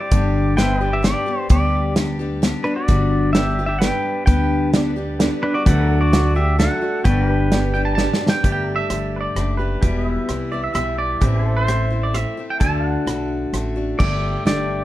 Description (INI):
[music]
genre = honky-tonk and classic country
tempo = 130 BPM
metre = 3/4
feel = straight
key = G major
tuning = A4 = 440 Hz
[part]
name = pedal steel guitar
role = melody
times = 0.0-7.9, 14.0-14.8 s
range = D4 to G5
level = -22 LUFS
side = equal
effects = none
[part]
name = picked steel-string acoustic guitar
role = accompaniment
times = 0.0-14.8 s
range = E2 to G4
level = -24 LUFS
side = left 3 dB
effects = none
[part]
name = pedal steel guitar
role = sustained chords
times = 0.0-14.8 s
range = G3 to G5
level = -31 LUFS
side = equal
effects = none
[part]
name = upright bass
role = bass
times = 0.1-14.8 s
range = E1 to D2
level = -21 LUFS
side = equal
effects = none
[part]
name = natural country drum kit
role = drums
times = 0.1-14.6 s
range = crash cymbal, hi-hat, kick drum, rim click, snare drum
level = -20 LUFS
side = equal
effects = none
[part]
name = honky-tonk upright piano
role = accompaniment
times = 3.3-8.4, 14.5-14.8 s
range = D4 to D5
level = -28 LUFS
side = right 6 dB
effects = none
[part]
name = twangy electric guitar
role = second line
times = 7.7-13.5 s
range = B4 to A5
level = -24 LUFS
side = right 3 dB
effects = tape echo
[sound]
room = light reverb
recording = dark, warm production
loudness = -17 LUFS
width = side -14 dB against mid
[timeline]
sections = 0.0-8.4 A section; 8.4-14.0 B section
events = drum fill 8.0-8.4; clean electric guitar solo 8.4-14.0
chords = 0.1 G; 5.7 D; 7.0 G; 8.4 Gsus2; 9.8 Em; 11.2 Am; 12.6 D; 14.0 Gsus2